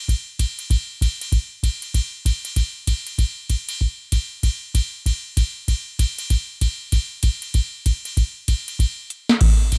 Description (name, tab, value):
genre	country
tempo	193 BPM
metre	4/4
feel	swing 61% on 8ths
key	none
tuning	none
part	booming analog drum machine	drums	0.1-9.8 s	crash cymbal, hi-hat, kick drum, ride cymbal, snare drum	-22 LUFS	equal	none
room	little or no reverb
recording	none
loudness	-23 LUFS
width	mono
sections	0.0-4.4 A section; 4.4-9.8 B section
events	drum fill 9.1-9.4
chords	none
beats	0.08 0.39 | 0.70 1.01 1.32 1.63 | 1.94 2.25 2.56 2.87 | 3.19 3.50 3.81 4.12 | 4.43 4.74 5.06 5.37 | 5.68 5.99 6.30 6.61 | 6.92 7.24 7.55 7.86 | 8.17 8.48 8.79 9.10 | 9.41 9.72